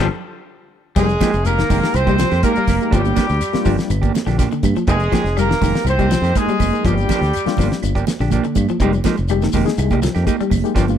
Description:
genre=afrobeat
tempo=122 BPM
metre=4/4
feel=straight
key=F dorian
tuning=A4 = 440 Hz
part: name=barky reed electric piano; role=accompaniment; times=0.0-11.0 s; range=G3 to Bb4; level=-25 LUFS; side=left 15 dB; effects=overdrive, fast tremolo
part: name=electric guitar at the edge of break-up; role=arpeggios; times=0.0-10.9 s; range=D3 to G3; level=-24 LUFS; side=left 9 dB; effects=spring reverb
part: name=clean electric guitar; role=stabs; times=0.0-10.9 s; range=F3 to G4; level=-25 LUFS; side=right 8 dB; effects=tremolo
part: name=fingered electric bass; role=bass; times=0.0-10.9 s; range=F1 to G2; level=-19 LUFS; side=equal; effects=none
part: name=warm horn section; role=melody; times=1.0-7.8 s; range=G4 to C5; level=-21 LUFS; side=equal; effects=none
part: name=brilliant trombone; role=second line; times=1.0-7.8 s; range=G3 to C4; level=-27 LUFS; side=right 3 dB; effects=none
part: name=damped 70s drum kit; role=drums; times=1.0-11.0 s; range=crash cymbal, hi-hat, kick drum, snare drum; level=-21 LUFS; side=equal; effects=none
part: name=shekere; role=percussion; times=1.0-11.0 s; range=none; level=-31 LUFS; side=left 4 dB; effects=none
part: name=claves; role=percussion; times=1.2-10.6 s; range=none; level=-37 LUFS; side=right 17 dB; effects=none
part: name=congas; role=percussion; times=1.2-11.0 s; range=none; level=-24 LUFS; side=right 10 dB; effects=none
room=small room ambience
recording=dry, close 1970s-style studio recording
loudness=-15 LUFS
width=side -9 dB against mid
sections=1.0-11.0 A section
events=band accent 0.0-1.0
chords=0.0 N.C.; 1.0 Fm11; 2.9 Gm7; 4.9 Fm11; 6.8 Gm7; 8.8 Fm11

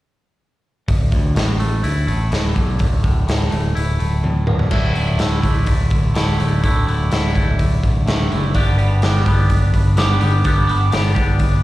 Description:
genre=quiet-loud alternative rock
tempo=126 BPM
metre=4/4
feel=straight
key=unclear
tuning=A4 = 440 Hz
part: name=twangy electric guitar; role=arpeggios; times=0.9-11.6 s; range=D2 to G4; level=-23 LUFS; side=equal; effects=phaser, analog delay, slapback echo
part: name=modern bright picked electric bass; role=bass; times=0.9-11.6 s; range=D1 to D2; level=-17 LUFS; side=equal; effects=none
part: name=raw garage drum kit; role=drums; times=0.9-11.5 s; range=crash cymbal, hi-hat, kick drum, snare drum, toms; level=-19 LUFS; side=equal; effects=none
room=little or no reverb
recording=live gig heard through the venue's PA, recital hall reverb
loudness=-15 LUFS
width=side -16 dB against mid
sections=0.9-4.7 A section; 4.7-11.6 B section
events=drum fill 4.2-4.7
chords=0.9 Dsus2; 8.5 G

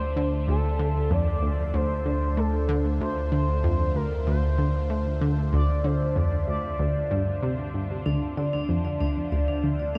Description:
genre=ambient, sequencer-driven space music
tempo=95 BPM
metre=4/4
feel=straight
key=D minor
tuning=A4 = 438 Hz
part: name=expressive synth lead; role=melody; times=0.0-7.7 s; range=A4 to D5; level=-34 LUFS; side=equal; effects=subtle chorus, shimmer reverb, analog delay
part: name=phased analog pad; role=sustained chords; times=0.0-10.0 s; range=D3 to E5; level=-41 LUFS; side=equal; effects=phaser, chorus, shimmer reverb
part: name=analog pluck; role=riff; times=0.0-10.0 s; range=D2 to A3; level=-28 LUFS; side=equal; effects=chorus, analog delay
part: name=warm sub bass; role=bass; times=0.0-10.0 s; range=D2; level=-31 LUFS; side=equal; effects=none
part: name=vibraphone with hard mallets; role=arpeggios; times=8.1-10.0 s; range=D4 to D5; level=-32 LUFS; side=equal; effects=analog delay
room=moderate huge ambient reverb, RT60 8.8 s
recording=dark, warm production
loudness=-26 LUFS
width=mono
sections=0.0-10.0 A section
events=none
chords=0.0 Dm7

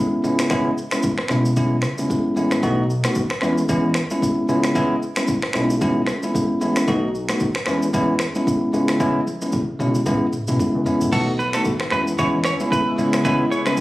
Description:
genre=afrobeats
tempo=113 BPM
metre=4/4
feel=swing 58% on 16ths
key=C# minor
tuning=A4 = 444 Hz
part: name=bell-like tine electric piano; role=accompaniment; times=0.0-13.8 s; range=G#3 to F#4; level=-20 LUFS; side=equal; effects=none
part: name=fat analog bass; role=bass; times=0.2-13.4 s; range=A1 to E2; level=-25 LUFS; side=equal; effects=none
part: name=afro-pop drum kit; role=drums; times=0.2-13.8 s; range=crash cymbal, finger snaps, kick drum, rim click, shaker, toms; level=-25 LUFS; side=equal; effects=none
part: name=congas and bongos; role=percussion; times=0.2-13.8 s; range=none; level=-35 LUFS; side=right 1 dB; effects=none
part: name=lush unison pad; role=sustained chords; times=11.4-13.8 s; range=C#3 to F#4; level=-27 LUFS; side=equal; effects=chorus, phaser
part: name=direct-recorded clean electric guitar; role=riff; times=11.1-13.7 s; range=A4 to C#5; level=-23 LUFS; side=right 2 dB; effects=ping-pong delay
room=light reverb, digital ambience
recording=recorded on a phone in the room, studio reverb, compression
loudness=-18 LUFS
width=side -17 dB against mid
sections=0.0-11.1 A section; 11.1-13.8 B section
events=drum fill 9.0-11.1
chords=0.2 C#m7; 2.6 B7; 3.4 E6; 4.5 C#m7; 6.9 B7; 7.7 E6; 8.7 C#m7; 11.1 B7; 11.9 E6; 13.0 C#m7

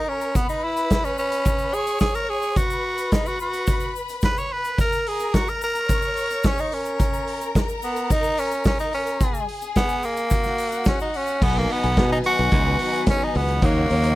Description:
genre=disco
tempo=108 BPM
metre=4/4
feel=straight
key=B major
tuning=A4 = 440 Hz
part: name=raspy tenor saxophone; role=melody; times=0.0-14.2 s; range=A#3 to C#5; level=-23 LUFS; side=equal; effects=none
part: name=rich studio string section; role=second line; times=0.0-14.2 s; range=D#4 to C#6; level=-29 LUFS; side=left 2 dB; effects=none
part: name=vintage drum kit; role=drums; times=0.2-14.2 s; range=crash cymbal, hi-hat, kick drum, snare drum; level=-23 LUFS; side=equal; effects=none
part: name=egg shaker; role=percussion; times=0.2-11.4 s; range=none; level=-41 LUFS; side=left 6 dB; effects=none
part: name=dark French horn section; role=sustained chords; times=11.4-14.2 s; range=C#3 to F#4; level=-30 LUFS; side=left 2 dB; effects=none
part: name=modern bright fingered electric bass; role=bass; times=11.4-14.2 s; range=B1 to B2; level=-22 LUFS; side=equal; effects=none
room=little or no reverb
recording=none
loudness=-20 LUFS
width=side -17 dB against mid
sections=0.0-11.4 A section; 11.4-14.2 B section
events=none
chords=0.4 Bsus2; 2.6 N.C.; 4.8 F# (rootless); 6.7 N.C.; 11.4 B; 13.6 D#m7

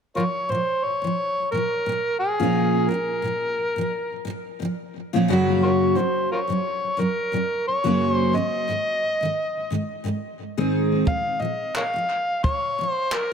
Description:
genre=acoustic pop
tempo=88 BPM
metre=4/4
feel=swing 55% on 16ths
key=Bb minor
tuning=A4 = 443 Hz
part: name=picked steel-string acoustic guitar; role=accompaniment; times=0.1-13.1 s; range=Gb2 to Ab4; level=-23 LUFS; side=equal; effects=double-tracked left and right, tape echo
part: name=overdriven harmonica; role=melody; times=0.2-13.3 s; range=F4 to F5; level=-24 LUFS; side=equal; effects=tape echo
part: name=compact cocktail drum kit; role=drums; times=11.1-13.3 s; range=handclaps, kick drum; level=-26 LUFS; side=equal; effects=tape echo
room=moderate plate reverb, RT60 2.0 s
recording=echo-heavy mix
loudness=-21 LUFS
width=side -7 dB against mid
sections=0.2-13.3 A section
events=none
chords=0.2 Bbm; 5.3 Gb; 8.3 Ab; 11.1 Bbm

